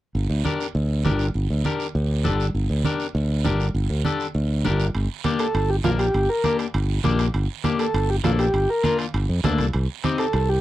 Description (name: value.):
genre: latin, cumbia.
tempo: 200 BPM.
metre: 4/4.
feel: straight.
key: G minor.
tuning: A4 = 440 Hz.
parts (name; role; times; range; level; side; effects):
modern bright fingered electric bass; bass; 0.1-10.6 s; G1 to F2; -22 LUFS; equal; none.
congas; percussion; 0.2-10.5 s; none; -28 LUFS; right 3 dB; none.
guiro; percussion; 0.2-10.6 s; none; -37 LUFS; right 18 dB; none.
electric guitar at the edge of break-up; accompaniment; 0.4-10.3 s; Bb3 to Bb4; -24 LUFS; left 5 dB; none.
timbales; percussion; 4.9-10.5 s; none; -34 LUFS; right 5 dB; none.
combo organ; melody; 5.4-10.6 s; F4 to Bb4; -22 LUFS; equal; none.
room: little or no reverb.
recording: dry, close 1970s-style studio recording.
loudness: -20 LUFS.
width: side -15 dB against mid.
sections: 0.1-4.9 A section; 4.9-10.6 B section.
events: none.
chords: 0.1 Gm; 9.7 Cm.